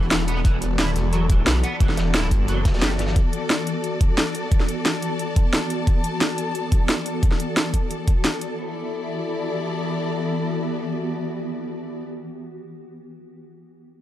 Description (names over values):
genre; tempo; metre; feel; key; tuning
dark technical drum and bass; 177 BPM; 4/4; straight; E minor; A4 = 440 Hz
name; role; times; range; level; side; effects
swarming drone; sustained chords; 0.0-12.1 s; E3 to A4; -28 LUFS; left 1 dB; built-in reverb, sidechain pumping
electric guitar at the edge of break-up; arpeggios; 0.0-2.9 s; E3 to E4; -31 LUFS; right 2 dB; ensemble chorus, sidechain pumping, digital delay
phased detuned saw bass; bass; 0.0-3.1 s; E1 to B1; -22 LUFS; equal; phaser, overdrive, sidechain pumping
crunchy breakbeat drum kit; drums; 0.0-3.2 s; hi-hat, snare drum; -35 LUFS; equal; none
rich studio string section; texture; 0.0-12.1 s; E4 to A5; -31 LUFS; left 3 dB; sidechain pumping
drum and bass drum kit; drums; 0.1-8.5 s; hi-hat, snare drum; -23 LUFS; equal; overdrive
electronic kick drum; drums; 0.4-8.1 s; none; -19 LUFS; equal; overdrive
room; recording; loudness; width
light reverb; dark, warm production; -20 LUFS; side -13 dB against mid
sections
0.0-8.6 A section; 8.6-11.3 B section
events
none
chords
0.0 Esus2; 8.6 Emadd9